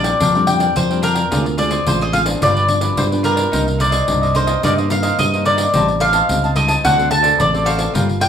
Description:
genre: samba and choro.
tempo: 108 BPM.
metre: 4/4.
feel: straight.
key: unclear.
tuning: A4 = 441 Hz.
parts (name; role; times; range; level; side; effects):
mandolin; melody; 0.0-8.3 s; Bb4 to A5; -17 LUFS; left 1 dB; plate reverb.
cavaquinho; accompaniment; 0.0-8.3 s; D4 to A5; -24 LUFS; right 3 dB; plate reverb.
nylon-string guitar; accompaniment; 0.0-8.3 s; G2 to A4; -24 LUFS; left 4 dB; plate reverb.
fingered electric bass; bass; 0.0-8.3 s; G1 to G2; -20 LUFS; right 1 dB; none.
pandeiro; percussion; 0.0-8.3 s; none; -23 LUFS; left 2 dB; none.
room: wet small room reverb, RT60 0.6 s.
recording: rough home demo mix, studio reverb.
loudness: -13 LUFS.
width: side -8 dB against mid.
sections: 0.0-8.3 A section.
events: none.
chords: 0.0 Bb69; 1.3 Dm7b5; 2.4 G7; 3.5 Cm9; 5.7 Am7b5; 6.8 D7.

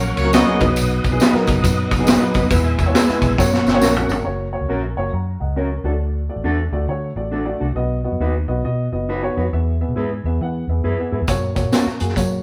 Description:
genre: uptempo 1960s-style soul.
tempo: 136 BPM.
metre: 4/4.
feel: swing 63% on 8ths.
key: F# mixolydian.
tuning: A4 = 440 Hz.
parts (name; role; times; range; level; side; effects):
warm horn section; second line; 0.0-0.7 s; F#3 to D#5; -24 LUFS; equal; none.
dark upright piano; accompaniment; 0.0-12.4 s; F#3 to A#5; -25 LUFS; equal; none.
tonewheel organ; sustained chords; 0.0-4.3 s; A#4 to E6; -29 LUFS; equal; slow rotary speaker, chorus vibrato.
vintage muted fingered electric bass; bass; 0.0-12.4 s; F#1 to F#3; -24 LUFS; equal; none.
vintage drum kit; drums; 0.2-4.2, 11.3-12.3 s; hi-hat, kick drum, ride cymbal, snare drum, toms; -21 LUFS; equal; none.
tambourine; percussion; 0.2-4.2, 11.3-12.3 s; none; -35 LUFS; equal; none.
mellow electric guitar; stabs; 0.3-11.8 s; C#4 to B4; -27 LUFS; equal; none.
room: moderate studio reverb, RT60 0.9 s.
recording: band playing live in one room.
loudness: -19 LUFS.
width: mono.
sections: 0.0-4.3 A section; 4.3-12.4 B section.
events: drum fill 3.4-4.3.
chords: 0.0 F#; 0.6 B; 2.5 E; 3.4 F#; 5.8 D; 7.8 B; 9.5 E; 11.3 F#.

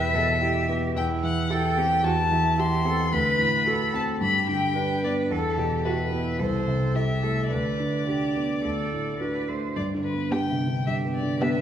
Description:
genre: quick classical-period movement for piano quintet.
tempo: 110 BPM.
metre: 4/4.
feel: straight.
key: G major.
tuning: A4 = 438 Hz.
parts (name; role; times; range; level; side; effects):
rich violin; melody; 0.0-11.6 s; A4 to C6; -27 LUFS; left 3 dB; none.
warm cello; second line; 0.0-11.6 s; E4 to C5; -30 LUFS; right 4 dB; none.
warm concert grand piano; accompaniment; 0.0-11.6 s; C2 to A4; -25 LUFS; right 1 dB; none.
warm violin; second line; 10.3-11.6 s; G4; -35 LUFS; equal; none.
dark viola; accompaniment; 10.3-11.6 s; B3; -31 LUFS; right 2 dB; none.
room: wet recital hall reverb, RT60 1.8 s.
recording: recorded in a church or concert hall.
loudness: -22 LUFS.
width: side -9 dB against mid.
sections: 0.0-9.8 A section; 9.8-11.6 B section.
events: none.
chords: 0.0 Em; 1.0 C/E; 3.1 D7; 4.2 G; 5.3 Em; 6.4 Am/C; 7.5 G/D; 8.6 D; 9.8 G.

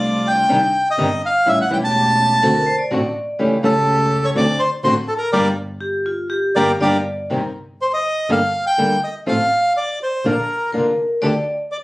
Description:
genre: tango.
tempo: 124 BPM.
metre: 4/4.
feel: rubato.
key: G minor.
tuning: A4 = 441 Hz.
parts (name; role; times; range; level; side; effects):
bandoneon; melody; 0.0-11.8 s; G4 to A5; -17 LUFS; equal; none.
rich chamber string section; stabs; 0.0-11.4 s; A3 to Bb4; -27 LUFS; equal; none.
rich double bass; bass; 0.0-11.4 s; E1 to D2; -25 LUFS; equal; none.
nylon-string guitar; accompaniment; 0.5-11.3 s; C3 to A4; -19 LUFS; equal; none.
vibraphone with hard mallets; second line; 2.4-7.3, 10.7-11.6 s; F4 to D5; -21 LUFS; left 1 dB; none.
room: light reverb.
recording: recorded on a phone in the room, studio ambience, compression.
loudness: -16 LUFS.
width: side -19 dB against mid.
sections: 0.0-7.3 A section; 7.3-11.8 B section.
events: band accent 5.3-7.3.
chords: 0.5 Cmadd9; 1.5 A7; 2.4 D7; 3.4 A7/C#; 4.4 D7; 5.3 Gm7; 7.3 Cm7; 8.3 Gmadd9; 9.3 F/A; 10.2 Bb; 11.2 Dsus4.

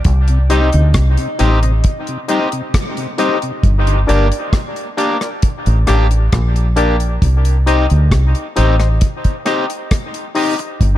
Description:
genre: dub reggae.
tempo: 67 BPM.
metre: 4/4.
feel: straight.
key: unclear.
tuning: A4 = 440 Hz.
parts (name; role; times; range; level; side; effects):
deep reggae drum kit; drums; 0.0-11.0 s; hi-hat, kick drum, rim click; -17 LUFS; equal; none.
deep dub fingered electric bass; bass; 0.1-11.0 s; G1 to D2; -12 LUFS; equal; none.
mellow tonewheel organ; accompaniment; 0.3-4.0 s; G2 to Eb4; -26 LUFS; left 3 dB; slow rotary speaker, high-pass filter, dub echo.
breathy tenor saxophone; melody; 0.5-0.9 s; Eb4; -27 LUFS; right 1 dB; dub echo.
electric guitar at the edge of break-up; accompaniment; 0.5-10.6 s; Bb3 to G4; -22 LUFS; right 3 dB; high-pass filter, dub echo.
percussive organ stab; stabs; 0.5-10.5 s; D4 to Eb5; -20 LUFS; left 5 dB; chorus, high-pass filter, dub echo.
room: studio ambience.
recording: echo-heavy mix.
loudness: -12 LUFS.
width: side -14 dB against mid.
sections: 0.0-11.0 A section.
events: break 0.1-10.8.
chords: 0.1 Cm; 3.6 Gm; 7.2 Cm.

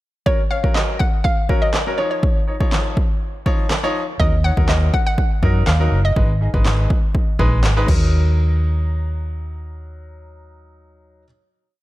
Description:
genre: dance-pop.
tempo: 122 BPM.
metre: 4/4.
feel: straight.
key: Eb minor.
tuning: A4 = 441 Hz.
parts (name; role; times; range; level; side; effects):
hollow square pluck; melody; 0.3-6.5 s; Db5 to Gb5; -24 LUFS; equal; chorus, dub echo.
bright grand piano; accompaniment; 0.3-11.3 s; F3 to Db5; -26 LUFS; left 1 dB; sidechain pumping.
deep house drum kit; drums; 0.3-8.0 s; crash cymbal, handclaps, kick drum, snare drum; -18 LUFS; equal; overdrive.
vintage muted fingered electric bass; bass; 4.2-11.2 s; Gb1 to Gb2; -17 LUFS; equal; sidechain pumping.
room: little or no reverb.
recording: dark, warm production.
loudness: -16 LUFS.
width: side -16 dB against mid.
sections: 0.3-8.1 verse; 8.1-11.8 final hit.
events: none.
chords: 0.3 Gb; 2.0 Dbadd9; 4.2 Ebm; 6.2 Abm; 7.9 Ebm.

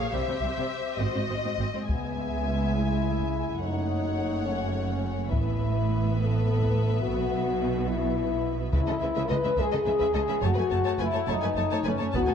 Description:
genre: cinematic, epic orchestral film score.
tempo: 70 BPM (dotted quarters).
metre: 6/8.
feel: straight.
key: C# minor.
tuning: A4 = 440 Hz.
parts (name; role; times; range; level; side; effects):
warm symphonic violin section; melody; 0.0-12.3 s; Eb5 to A5; -35 LUFS; left 5 dB; none.
warm symphonic violin section; second line; 0.0-12.3 s; A4 to E5; -37 LUFS; left 4 dB; none.
warm symphonic viola section; accompaniment; 0.0-12.3 s; G3 to Ab4; -36 LUFS; right 1 dB; none.
warm symphonic cello section; bass; 0.0-12.3 s; C#2 to C#3; -31 LUFS; right 2 dB; none.
rich symphonic double bass section; bass; 0.1-12.2 s; F#1 to C#2; -31 LUFS; right 4 dB; none.
warm French horn section; sustained chords; 1.9-12.3 s; B3 to B4; -28 LUFS; left 4 dB; none.
taiko ensemble; drums; 1.9-12.3 s; none; -32 LUFS; left 1 dB; none.
timpani; percussion; 8.7-9.5 s; C#3; -40 LUFS; equal; none.
room: moderate concert hall reverb, RT60 2.2 s.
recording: dark, warm production.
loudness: -24 LUFS.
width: side -7 dB against mid.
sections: 0.0-1.9 A section; 1.9-12.3 B section.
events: none.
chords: 0.1 C; 1.0 Ab7; 1.9 C#m7; 3.6 F#m; 5.3 Asus2; 7.0 Bsus4; 8.7 C#m7; 10.4 F#m.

